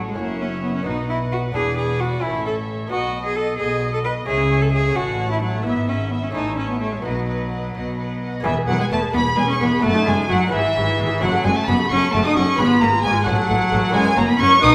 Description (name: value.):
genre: classical, baroque-style concerto movement with solo episodes.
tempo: 88 BPM (dotted quarters).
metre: 6/8.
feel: straight.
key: E major.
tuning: A4 = 436 Hz.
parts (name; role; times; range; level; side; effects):
rich chamber violin section; melody; 0.0-14.7 s; D#5 to D#6; -28 LUFS; equal; none.
dark studio violin section; second line; 0.0-14.7 s; C#5 to D#6; -28 LUFS; equal; none.
dark chamber viola section; accompaniment; 0.0-14.7 s; D#4 to E5; -31 LUFS; equal; none.
lute; accompaniment; 0.0-14.7 s; E2 to C#5; -33 LUFS; equal; none.
warm chamber cello section; bass; 0.0-14.7 s; E2 to C#3; -29 LUFS; equal; none.
warm chamber double bass section; bass; 0.0-14.7 s; E1 to C#2; -29 LUFS; equal; none.
rich cello; melody; 0.1-14.7 s; E3 to B4; -24 LUFS; equal; none.
room: wet recital hall reverb, RT60 1.3 s.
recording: none.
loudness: -20 LUFS.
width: mono.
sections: 0.0-8.5 A section; 8.5-14.7 B section.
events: none.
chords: 0.2 F#5; 0.9 B; 1.6 E5; 2.2 A; 2.9 B; 4.3 C#m; 5.0 F#m/A; 5.7 E/G#; 6.4 A; 7.0 B; 8.5 E; 9.8 D#dim/F#; 10.5 E/G#; 11.2 F#m; 12.6 Fdim/Ab; 13.3 F#m/A; 13.9 F#7.